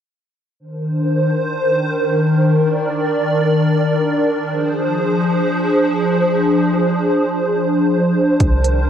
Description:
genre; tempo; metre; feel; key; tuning
hip hop, atmospheric cloud-rap; free time; none; none; C minor; A4 = 440 Hz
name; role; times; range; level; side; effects
hollow soft pad; sustained chords; 0.6-8.9 s; Eb3 to D5; -15 LUFS; equal; ensemble chorus, cassette tape
clean 808-style bass; bass; 8.4-8.9 s; C2; -16 LUFS; equal; none
trap drum kit; drums; 8.4-8.8 s; hi-hat, kick drum; -16 LUFS; equal; none
room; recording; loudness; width
light reverb; home recording on cassette; -14 LUFS; side -9 dB against mid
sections
0.6-8.9 A section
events
none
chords
0.6 Cm9; 4.5 Dm7b5

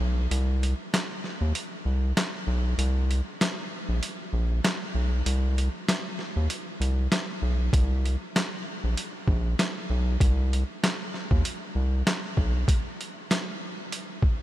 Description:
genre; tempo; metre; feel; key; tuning
hip hop, boom-bap hip-hop; 97 BPM; 4/4; swing 57% on 16ths; unclear; A4 = 440 Hz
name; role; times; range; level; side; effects
round analog bass; bass; 0.0-12.6 s; Bb1 to Eb2; -24 LUFS; equal; none
boom bap sampler-style drum kit; drums; 0.3-14.4 s; hi-hat, kick drum, snare drum; -28 LUFS; equal; none
room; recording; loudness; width
light reverb, digital ambience; none; -25 LUFS; side -15 dB against mid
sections
0.0-14.4 A section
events
break 0.0-7.7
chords
none

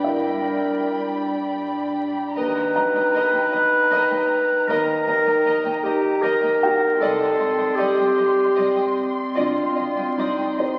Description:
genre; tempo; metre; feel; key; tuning
cinematic; 78 BPM; 3/4; straight; unclear; A4 = 440 Hz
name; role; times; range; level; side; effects
muted symphonic violin section; melody; 0.0-10.8 s; A#5 to C6; -34 LUFS; equal; none
muted symphonic violin section; second line; 0.0-10.7 s; A#4 to G5; -32 LUFS; equal; none
glass harmonica; sustained chords; 0.0-10.8 s; C4 to G5; -30 LUFS; equal; none
muted symphonic cello section; bass; 0.0-10.7 s; C2 to G2; -40 LUFS; equal; none
felt-muted upright piano; texture; 0.0-10.8 s; D4 to A#5; -30 LUFS; equal; none
mellow clarinet; second line; 0.1-10.8 s; Eb4 to B4; -22 LUFS; equal; none
muted symphonic double bass section; bass; 2.4-9.6 s; C2 to D#2; -44 LUFS; equal; none
room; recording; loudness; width
wet scoring stage reverb, RT60 2.2 s; very old 78 rpm record, vinyl crackle; -21 LUFS; mono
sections
0.0-10.8 A section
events
none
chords
0.0 G; 2.4 D#; 7.0 Cmadd9

